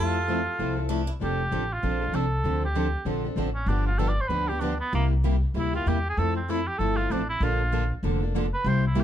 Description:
acoustic string swing (jazz manouche); 194 BPM; 4/4; swing 60% on 8ths; F major; A4 = 441 Hz
warm cor anglais; melody; 0.0-9.0 s; Bb3 to D5; -29 LUFS; right 2 dB
picked swing-style acoustic guitar; second line; 0.0-1.1 s; D4 to A4; -33 LUFS; right 4 dB
picked plugged-in steel-string acoustic guitar; accompaniment; 0.0-9.0 s; C3 to A4; -30 LUFS; left 4 dB
picked steel-string acoustic guitar; accompaniment; 0.0-9.0 s; C3 to A4; -34 LUFS; right 9 dB
upright bass; bass; 0.0-9.0 s; F1 to F2; -26 LUFS; equal
light reverb; close, detailed microphones; -24 LUFS; side -10 dB against mid
0.0-1.2 A section; 1.2-9.0 B section
cor anglais solo 1.2-9.0
0.0 Fmaj7; 1.2 F6; 2.5 Dm7; 3.7 G7; 4.9 C7; 6.2 Fmaj7; 7.4 Bbmaj7

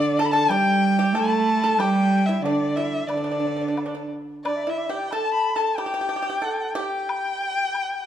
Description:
chinese traditional, Chinese chamber ensemble; 92 BPM; 4/4; rubato; D zhi mode; A4 = 440 Hz
warm erhu; melody; 0.0-8.1 s; D5 to B5; -25 LUFS; left 2 dB
clear cello; second line; 0.0-4.1 s; D3 to A3; -23 LUFS; right 3 dB
dizi; second line; 0.0-8.1 s; D5 to B5; -28 LUFS; left 7 dB
pipa; second line; 0.0-8.1 s; D4 to A4; -28 LUFS; right 3 dB
woodblock; percussion; 0.5-7.9 s; -36 LUFS; left 2 dB
moderate recital hall reverb, RT60 1.8 s; dark, warm production; -20 LUFS; side -10 dB against mid
0.0-4.5 A section; 4.5-8.1 B section

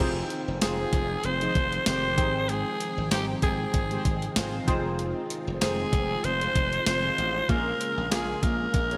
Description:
1980s-style pop; 96 BPM; 4/4; swing 55% on 16ths; F minor; A4 = 441 Hz
glassy digital keys; accompaniment; 0.0-9.0 s; Bb3 to G5; -36 LUFS; equal; chorus
string machine, cellos; sustained chords; 0.0-9.0 s; Db3 to G5; -40 LUFS; equal
glassy slap bass; bass; 0.0-9.0 s; F1 to Bb1; -35 LUFS; equal
clean 12-bit digital drum machine; drums; 0.3-9.0 s; hi-hat, kick drum, snare drum, tambourine; -30 LUFS; equal; overdrive
breathy alto saxophone; melody; 0.6-9.0 s; G4 to C5; -31 LUFS; equal
buzzing marimba with soft mallets; second line; 0.6-9.0 s; G3 to C4; -41 LUFS; equal
analog synth brass; stabs; 1.4-9.0 s; Eb3 to Db5; -40 LUFS; equal; chorus
moderate lush hall reverb, RT60 2.4 s; bright 1980s-style digital production; -27 LUFS; mono
0.0-9.0 A section
0.0 Fm7; 2.2 Abmaj7; 4.7 Fm7; 7.5 Bbm7

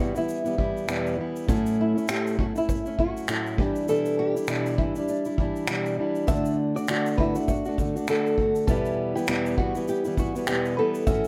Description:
acoustic pop; 100 BPM; 4/4; swing 60% on 16ths; A4 = 440 Hz
nylon-string guitar; melody; 0.0-11.3 s; D4 to A4; -31 LUFS; equal
fingerpicked plugged-in steel-string acoustic guitar; accompaniment; 0.0-11.3 s; E2 to F#4; -29 LUFS; equal
unplugged drum kit; drums; 0.2-11.3 s; finger snaps, kick drum, shaker; -30 LUFS; equal
direct-recorded clean electric guitar; arpeggios; 6.3-11.3 s; F#4 to E5; -35 LUFS; equal
light reverb; band playing live in one room; -25 LUFS; mono
0.0-11.3 A section
0.0 Em; 1.5 A6; 3.6 G6/B; 6.3 D; 8.7 Em

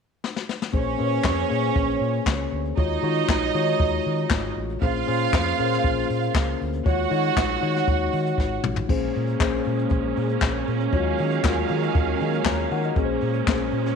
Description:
disco; 118 BPM; 4/4; straight; Bb minor; A4 = 439 Hz
jazz brush drum kit; drums; 0.2-14.0 s; crash cymbal, handclaps, hi-hat, kick drum, snare drum, toms; -24 LUFS; left 1 dB
clear studio string section; second line; 0.7-8.6 s; Db4 to Gb5; -26 LUFS; right 13 dB
mellow tine electric piano; accompaniment; 0.7-14.0 s; Ab3 to Bb5; -26 LUFS; left 11 dB; wide subtle chorus
overdriven fingered electric bass; bass; 0.7-13.9 s; Ab1 to Eb3; -28 LUFS; right 2 dB
clear symphonic string section; sustained chords; 8.9-14.0 s; Eb3 to F5; -27 LUFS; right 15 dB
light reverb; 1960s-style stereo with parts hard left and right; -21 LUFS; side -6 dB against mid
0.7-8.9 A section; 8.9-14.0 B section
drum fill 0.2-0.7, 8.4-8.9
0.0 N.C.; 0.7 Bbm9; 2.8 Ebm11; 4.8 Bbm9; 6.9 Ebm11; 8.9 Bbm9; 10.9 Ebm11; 13.0 Bbm9

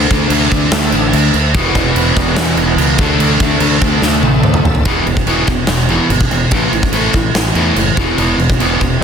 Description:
hard rock; 145 BPM; 4/4; straight; A4 = 440 Hz
bright tonewheel organ; sustained chords; 0.0-4.8 s; E3 to E5; -22 LUFS; equal; slow rotary speaker, overdrive, chorus vibrato
overdriven electric guitar; riff; 0.0-9.0 s; E2 to D4; -15 LUFS; equal
growling fingered electric bass; bass; 0.0-9.0 s; E1 to E2; -17 LUFS; equal; overdrive
big rock drum kit; drums; 0.1-8.9 s; crash cymbal, kick drum, snare drum, toms; -14 LUFS; right 1 dB; soft clipping on kick, soft clipping on snare
studio reverb; dense, heavily limited modern master; -10 LUFS; side -7 dB against mid
0.0-4.9 A section; 4.9-9.0 B section
drum fill 4.0-4.9
0.0 D5; 1.6 E5; 3.0 D5; 4.9 E5; 6.5 A5; 8.0 E5

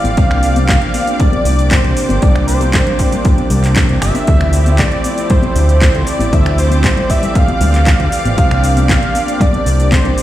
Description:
nu-disco, nu disco; 117 BPM; 4/4; straight; A4 = 440 Hz
wide unison lead; melody; 0.0-10.2 s; C5 to F5; -19 LUFS; equal; tape echo
warm analog pad; accompaniment; 0.0-10.2 s; E3 to G4; -20 LUFS; right 2 dB; chorus, vintage 12-bit sampler grit, tape echo
clear studio string section; sustained chords; 0.0-10.2 s; D5 to D6; -26 LUFS; left 3 dB; sidechain pumping
fat analog bass; bass; 0.0-10.1 s; G1 to F2; -13 LUFS; equal; tube saturation
house drum kit; drums; 0.0-10.2 s; finger snaps, handclaps, hi-hat, shaker; -21 LUFS; equal; overdrive
congas; percussion; 0.0-10.0 s; -24 LUFS; left 3 dB
electronic kick drum; drums; 0.2-10.0 s; -14 LUFS; equal; overdrive
digital ambience; played on a big sound system in a bare room, stone room reverb; -10 LUFS; side -13 dB against mid
0.0-10.2 A section
0.2 C7sus4; 4.3 Dm11; 8.4 C7sus4

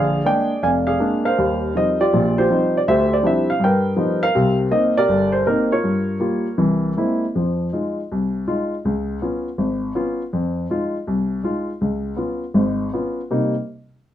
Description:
solo jazz; 161 BPM; 4/4; swing 65% on 8ths, rubato; C minor; A4 = 438 Hz
dark baby grand piano; solo; 0.0-13.5 s; F1 to Ab5; -18 LUFS; equal
wet club reverb, RT60 0.5 s; -18 LUFS; side -11 dB against mid
0.0-7.4 A section; 7.4-13.3 B section
0.0 Bb7; 1.4 Eb69; 2.9 Dm11; 3.6 G7alt; 4.3 Cm7; 5.8 Gm7b5; 6.6 C7b13; 7.4 Fm7; 8.9 Db7; 10.3 Fm7; 11.8 Db7; 13.3 Cm7

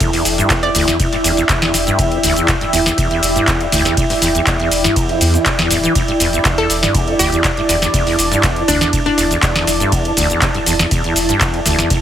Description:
acid house; 121 BPM; 4/4; straight; E minor; A4 = 441 Hz
dark analog pad; sustained chords; 0.0-12.0 s; E4 to E5; -21 LUFS; right 2 dB; chorus, sidechain pumping
acid bass, saw; riff; 0.0-12.0 s; D2 to E3; -20 LUFS; equal; lush chorus, sidechain pumping, tape echo
booming analog drum machine; drums; 0.0-12.0 s; handclaps, hi-hat, ride cymbal, shaker, snare drum; -17 LUFS; equal
dusty soul sampler-style drum kit; drums; 0.0-12.0 s; hi-hat, ride cymbal, snare drum; -30 LUFS; right 2 dB
electronic kick drum; drums; 0.0-12.0 s; -20 LUFS; equal
granular cloud pad; texture; 0.0-12.0 s; E4 to A5; -20 LUFS; equal; built-in reverb, sidechain pumping
round analog bass; bass; 0.3-11.8 s; D1 to E2; -22 LUFS; equal; sidechain pumping
hollow square pluck; melody; 0.6-1.1, 6.6-9.3 s; D4 to D5; -21 LUFS; equal; chorus, analog delay
moderate studio ambience, RT60 0.5 s; heavily compressed radio sound, multiband compression; -12 LUFS; side -10 dB against mid
0.0-12.0 A section
0.0 Em7

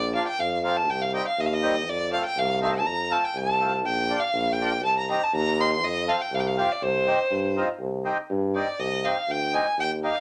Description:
klezmer; 121 BPM; 2/4; straight; C dorian; A4 = 439 Hz
rich violin; melody; 0.0-10.2 s; C5 to C6; -27 LUFS; equal
clear tuba; bass; 0.0-10.1 s; Bb1 to G2; -30 LUFS; equal
accordion; accompaniment; 0.1-10.2 s; F3 to Bb4; -30 LUFS; equal
wet studio ambience, RT60 0.5 s; -25 LUFS; mono
0.0-7.8 A section; 7.8-10.2 B section
violin solo 7.8-10.2
0.0 Bb; 0.9 Cm; 1.9 F; 3.9 Bb; 4.8 Cm; 5.8 F; 6.8 Cm

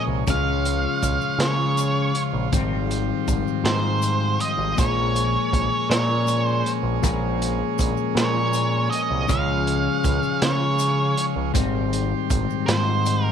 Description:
psychedelic rock; 53 BPM (dotted quarters); 6/8; straight; Bb dorian; A4 = 441 Hz
octave-fuzz lead guitar; melody; 0.0-13.3 s; C5 to F5; -25 LUFS; right 2 dB; distortion, slapback echo
combo organ; sustained chords; 0.0-13.3 s; F3 to Db5; -30 LUFS; right 16 dB; spring reverb
twelve-string electric guitar; riff; 0.0-13.3 s; Ab2 to F4; -25 LUFS; left 10 dB; rotary speaker
growling picked electric bass; bass; 0.1-13.3 s; Ab1 to Db3; -25 LUFS; right 1 dB; overdrive
crunchy breakbeat drum kit; drums; 0.3-13.2 s; hi-hat, kick drum, snare drum; -26 LUFS; right 2 dB
maracas; percussion; 0.3-13.2 s; -36 LUFS; left 18 dB
small room reverb; 1960s-style stereo with parts hard left and right; -20 LUFS; side -8 dB against mid
0.0-13.3 A section
0.3 Db; 2.5 Abmaj7; 4.8 Bbm7; 9.3 Db; 11.6 Abmaj7

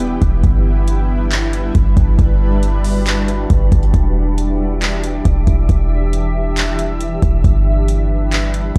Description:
hip hop, atmospheric cloud-rap; 137 BPM; 4/4; half-time; A4 = 443 Hz
shimmering ambient pad; sustained chords; 0.0-8.8 s; E3 to E5; -24 LUFS; equal; chorus, built-in reverb, sidechain pumping
clean 808-style bass; bass; 0.0-8.8 s; E1 to G1; -17 LUFS; equal
smooth R&B drum kit; drums; 0.0-8.8 s; handclaps, hi-hat, kick drum; -21 LUFS; equal
wind-like tuned noise texture; texture; 0.0-8.8 s; G3 to E5; -34 LUFS; equal; built-in reverb
little or no reverb; dark, warm production; -15 LUFS; mono
0.0-8.8 A section
0.4 G6; 3.9 Em7; 7.4 G6

